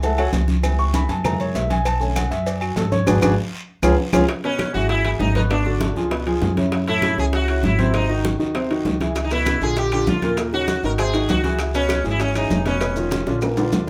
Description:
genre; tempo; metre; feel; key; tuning
Afro-Cuban jazz; 197 BPM; 4/4; straight; F# minor, C# minor from 4.3 s; A4 = 439 Hz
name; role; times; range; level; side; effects
warm grand piano; accompaniment; 0.0-13.8 s; A2 to C#6; -26 LUFS; equal; none
upright bass; bass; 0.0-13.9 s; E#1 to G#2; -25 LUFS; equal; none
agogo bells and timbales; percussion; 0.0-13.9 s; none; -32 LUFS; equal; none
congas; percussion; 0.0-13.9 s; none; -29 LUFS; equal; none
cowbell and bongos; percussion; 0.0-13.8 s; none; -30 LUFS; equal; none
guiro; percussion; 0.0-13.9 s; none; -41 LUFS; equal; none
maracas; percussion; 0.0-4.2, 9.2-13.9 s; none; -40 LUFS; equal; none
claves; percussion; 0.2-13.6 s; none; -36 LUFS; equal; none
sitar; melody; 4.4-13.4 s; C#4 to A#4; -26 LUFS; equal; none
room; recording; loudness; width
moderate studio ambience, RT60 0.5 s; none; -20 LUFS; mono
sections
0.0-4.3 A section; 4.3-13.9 B section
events
grand piano solo 0.0-4.3; band accent 3.1-4.3; drum fill 3.4-4.3, 13.3-13.9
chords
0.0 F#m7; 0.6 C#m7b5; 1.2 F#7; 1.9 Bm7; 3.1 F#sus2/G#; 3.7 C#; 4.3 C#m7; 5.5 G#m7b5; 6.1 C#7; 6.7 F#m7; 7.9 G#7; 9.2 C#m7; 9.8 A#; 10.4 D#m7; 11.0 G#7; 11.6 C#m7; 12.8 Bmaj9#11/E#

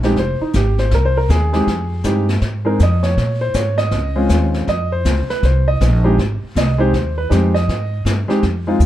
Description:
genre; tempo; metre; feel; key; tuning
jazz piano trio; 160 BPM; 4/4; swing 64% on 8ths; F minor; A4 = 441 Hz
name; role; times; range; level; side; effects
clear grand piano; melody; 0.0-8.8 s; Ab3 to Eb5; -18 LUFS; right 1 dB; none
upright bass; bass; 0.0-8.9 s; F1 to Bb2; -16 LUFS; equal; none
jazz brush drum kit; drums; 0.0-8.9 s; brushed snare drum, hi-hat, kick drum, snare drum; -24 LUFS; left 2 dB; none
room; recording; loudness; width
light reverb; dark, warm production; -14 LUFS; side -13 dB against mid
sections
0.0-8.9 A section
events
grand piano solo 0.0-8.9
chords
0.2 Fm7; 3.2 Bbm9; 4.7 Fm7

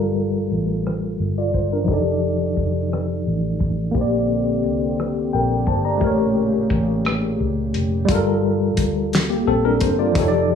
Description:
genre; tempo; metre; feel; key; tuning
slow six-eight R&B; 58 BPM (dotted quarters); 6/8; straight; G minor; A4 = 441 Hz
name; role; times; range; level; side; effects
tine electric piano; accompaniment; 0.0-10.6 s; F3 to Bb5; -20 LUFS; left 2 dB; overdrive, fast stereo tremolo
vintage muted fingered electric bass; bass; 0.0-10.6 s; F1 to D2; -24 LUFS; equal; none
warm soul drum kit; drums; 0.5-10.3 s; hi-hat, kick drum, rim click, snare drum; -22 LUFS; equal; none
warm analog pad; sustained chords; 4.0-8.1 s; Bb2 to G4; -27 LUFS; left 3 dB; chorus
room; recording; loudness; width
moderate studio reverb, RT60 0.7 s; low-pass filter, studio reverb; -18 LUFS; side -7 dB against mid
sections
0.0-8.1 A section; 8.1-10.6 B section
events
filter sweep 0.0-8.1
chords
0.0 Gm9; 1.9 F13; 3.9 Bb69; 6.0 A7b9; 8.1 Gm9

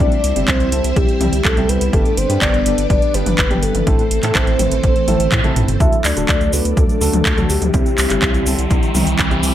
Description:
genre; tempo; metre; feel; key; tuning
italo disco; 124 BPM; 4/4; straight; unclear; A4 = 441 Hz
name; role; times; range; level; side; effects
soft octave-layered synth lead; melody; 0.0-8.9 s; G4 to E5; -21 LUFS; left 1 dB; chorus, tremolo, tape echo
string machine, full ensemble; sustained chords; 0.0-9.5 s; E3 to E5; -23 LUFS; equal; ensemble chorus
dark grand piano; stabs; 0.0-9.5 s; G2 to B4; -24 LUFS; right 1 dB; none
round analog bass; bass; 0.0-9.5 s; D1 to A2; -20 LUFS; equal; none
electronic kick drum; drums; 0.0-9.3 s; none; -18 LUFS; equal; none
house drum kit; drums; 0.0-9.5 s; cabasa, handclaps, hi-hat, toms; -20 LUFS; equal; none
riser; sound effects; 7.0-9.5 s; none; -26 LUFS; right 1 dB; none
room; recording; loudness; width
light reverb, digital ambience; none; -13 LUFS; side -11 dB against mid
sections
0.0-5.8 A section; 5.8-9.5 B section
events
drum fill 5.1-5.8; band accent 5.3; filter sweep on string machine 5.8-9.5; riser 7.0-9.5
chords
0.0 C; 1.9 G; 3.9 Am; 5.8 D; 7.7 C

